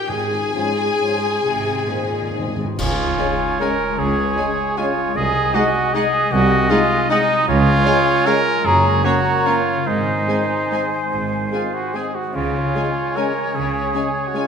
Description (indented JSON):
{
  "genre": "classical, orchestral ballroom waltz",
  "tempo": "123-169 BPM",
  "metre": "3/4",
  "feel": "rubato",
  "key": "Db major",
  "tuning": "A4 = 440 Hz",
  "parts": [
    { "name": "clear studio violin section", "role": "melody", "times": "0.0-14.4 s", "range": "Db5 to Ab5", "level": "-29 LUFS", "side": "left 6 dB", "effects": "none" },
    { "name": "clear oboe", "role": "second line", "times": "0.0-14.5 s", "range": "G4 to Eb5", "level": "-24 LUFS", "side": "right 3 dB", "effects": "none" },
    { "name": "rich studio violin section", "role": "second line", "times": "0.0-14.4 s", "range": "C4 to Ab4", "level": "-32 LUFS", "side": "left 4 dB", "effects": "none" },
    { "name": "rich studio viola section", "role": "accompaniment", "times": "0.0-14.4 s", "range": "Ab3 to Ab4", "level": "-26 LUFS", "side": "left 1 dB", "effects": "none" },
    { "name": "concert harp", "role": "arpeggios", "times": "0.0-14.5 s", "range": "Gb2 to Eb6", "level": "-26 LUFS", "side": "left 6 dB", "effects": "none" },
    { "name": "clear studio cello section", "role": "bass", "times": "0.1-13.9 s", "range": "C2 to Db3", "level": "-25 LUFS", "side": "right 3 dB", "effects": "none" },
    { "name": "rich studio double bass section", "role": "bass", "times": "0.1-13.9 s", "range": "Gb1 to Db2", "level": "-27 LUFS", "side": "right 2 dB", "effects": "none" },
    { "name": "timpani", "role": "percussion", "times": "0.1-2.7 s", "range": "Ab2", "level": "-31 LUFS", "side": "left 1 dB", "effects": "none" },
    { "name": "mellow French horn section", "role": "sustained chords", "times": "0.5-14.5 s", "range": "Eb3 to Eb4", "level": "-28 LUFS", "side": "left 3 dB", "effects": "none" },
    { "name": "large flute ensemble", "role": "second line", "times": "2.8-14.5 s", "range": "Ab5 to Bb5", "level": "-25 LUFS", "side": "left 1 dB", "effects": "none" },
    { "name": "clear trumpet", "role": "stabs", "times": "2.8-14.5 s", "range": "Eb4 to Bb4", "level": "-21 LUFS", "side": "right 2 dB", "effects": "none" },
    { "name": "clash cymbals and concert bass drum", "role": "percussion", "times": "2.8-3.6 s", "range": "none", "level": "-29 LUFS", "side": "equal", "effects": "none" }
  ],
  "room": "moderate scoring stage reverb, RT60 1.9 s",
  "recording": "none",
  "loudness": "-16 LUFS",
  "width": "side -6 dB against mid",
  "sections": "0.0-2.8 A section; 2.8-14.5 B section",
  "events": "timpani fill 1.5-2.8; band accent 2.8-3.2",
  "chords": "0.1 Db/Ab; 1.5 Ab; 2.8 Db; 5.2 Ab7/C; 7.5 Db; 8.6 Gb; 9.9 Ab; 12.3 Db",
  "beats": "| 0.09 0.54 1.02 | 1.46 1.90 2.36 | 2.79 3.18 3.60 | 3.99 4.38 4.78 | 5.16 5.54 5.94 | 6.32 6.70 7.10 | 7.47 7.85 8.26 | 8.65 9.04 9.45 | 9.86 10.28 10.71 | 11.11 11.52 11.94 | 12.34 12.75 13.16 | 13.54 13.93 14.34"
}